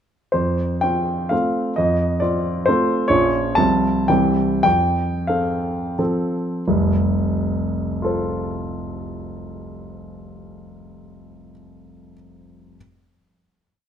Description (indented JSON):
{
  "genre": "classical, romantic triple-time dance for piano with dotted rhythms",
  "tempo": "83-140 BPM",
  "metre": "3/4",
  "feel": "rubato",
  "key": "F major",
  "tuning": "A4 = 440 Hz",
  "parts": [
    { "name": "warm baby grand piano", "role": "solo", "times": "0.3-12.8 s", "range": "F1 to A5", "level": "-18 LUFS", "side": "equal", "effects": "none" }
  ],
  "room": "moderate recital hall reverb, RT60 1.8 s",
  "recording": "close, detailed microphones",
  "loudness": "-18 LUFS",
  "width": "side -8 dB against mid",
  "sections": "0.3-6.7 A section; 6.7-10.7 final chord",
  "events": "slowing down 2.5-6.7",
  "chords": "0.3 F; 3.1 Bbm; 3.6 F/C; 4.1 C; 4.6 F"
}